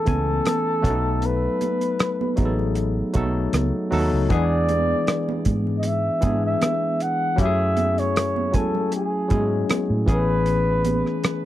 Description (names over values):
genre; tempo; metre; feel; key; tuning
lush 1970s-style soul; 78 BPM; 4/4; swing 54% on 16ths; unclear; A4 = 440 Hz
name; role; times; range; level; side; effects
breathy flugelhorn; melody; 0.0-11.2 s; G#4 to F#5; -24 LUFS; equal; tape echo
barky tine electric piano; accompaniment; 0.0-11.4 s; E3 to G#5; -24 LUFS; left 2 dB; auto-pan
vintage muted fingered electric bass; bass; 0.1-11.0 s; A1 to A2; -24 LUFS; equal; none
cloth-damped thuddy drum kit; drums; 0.1-11.4 s; hi-hat, kick drum, rim click; -23 LUFS; right 1 dB; none
congas; percussion; 0.1-11.4 s; none; -31 LUFS; right 9 dB; none
room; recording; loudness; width
light reverb; dry, close 1970s-style studio recording; -19 LUFS; side -13 dB against mid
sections
0.0-11.4 A section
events
none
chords
0.0 Amaj9; 0.8 B7; 4.3 E7; 7.4 F#m9; 10.1 Amaj9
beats
0.46 | 1.23 2.00 2.77 3.54 | 4.31 5.08 5.85 6.62 | 7.39 8.16 8.93 9.70 | 10.46 11.23